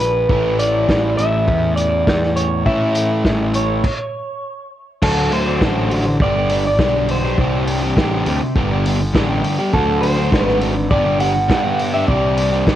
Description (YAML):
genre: indie rock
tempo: 102 BPM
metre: 4/4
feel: straight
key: D mixolydian from 5.0 s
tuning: A4 = 438 Hz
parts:
  - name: electric guitar through a small old amp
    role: melody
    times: 0.0-12.8 s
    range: A4 to F#5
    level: -20 LUFS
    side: equal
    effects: spring reverb, plate reverb, analog delay
  - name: fuzz picked electric bass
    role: bass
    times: 0.0-12.8 s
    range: G1 to A2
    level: -20 LUFS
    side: equal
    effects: overdrive
  - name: vintage drum kit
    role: drums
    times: 0.0-12.8 s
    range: crash cymbal, hi-hat, kick drum, snare drum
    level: -20 LUFS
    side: equal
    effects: none
  - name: crunchy overdriven guitar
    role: riff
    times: 0.3-12.8 s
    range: G2 to G4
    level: -20 LUFS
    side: equal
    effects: none
room: light reverb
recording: worn, warbling old tape, cassette tape, warbly pitch drift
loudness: -14 LUFS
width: side -12 dB against mid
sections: 0.0-5.0 A section; 5.0-12.8 B section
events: stop 3.8-5.0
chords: 0.3 A; 5.0 D; 6.2 G; 7.4 Csus2; 8.6 G; 9.7 D; 10.9 Gmaj7; 12.1 Csus2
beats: | 0.30 0.89 1.48 2.07 | 2.67 3.26 3.85 4.44 | 5.03 5.61 6.20 6.79 | 7.38 7.97 8.56 9.14 | 9.73 10.32 10.91 11.49 | 12.08 12.66